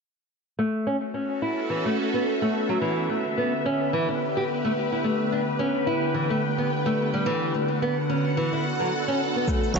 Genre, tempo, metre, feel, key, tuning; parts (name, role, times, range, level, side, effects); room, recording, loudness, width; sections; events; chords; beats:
organic downtempo; 108 BPM; 4/4; swing 56% on 16ths; A mixolydian; A4 = 437 Hz
bowed-like drone; sustained chords; 1.2-9.8 s; D3 to G5; -27 LUFS; equal; built-in reverb, phaser, sidechain pumping
nylon-string guitar; arpeggios; 0.6-9.8 s; E3 to G4; -26 LUFS; equal; low-pass filter, ping-pong delay
wind-like tuned noise texture; texture; 1.5-9.8 s; B3 to B4; -32 LUFS; equal; built-in reverb
electronic kick drum; drums; 9.5-9.6 s; -25 LUFS; equal; overdrive
shaker; drums; 9.5-9.8 s; -44 LUFS; left 2 dB; overdrive
bell-like tine electric piano; accompaniment; 9.7-9.8 s; E3 to F#4; -23 LUFS; right 3 dB; sidechain pumping
woody FM bass; bass; 9.8 s; A1; -26 LUFS; equal; tube saturation
moderate lush hall reverb, RT60 2.2 s; nothing above 7.8 kHz; -23 LUFS; side -4 dB against mid
0.6-9.8 A section
0.6 A6; 2.8 Em7; 7.3 D
| 0.59 1.15 1.70 2.26 | 2.81 3.37 3.92 4.48 | 5.03 5.59 6.14 6.70 | 7.26 7.81 8.37 8.92 | 9.48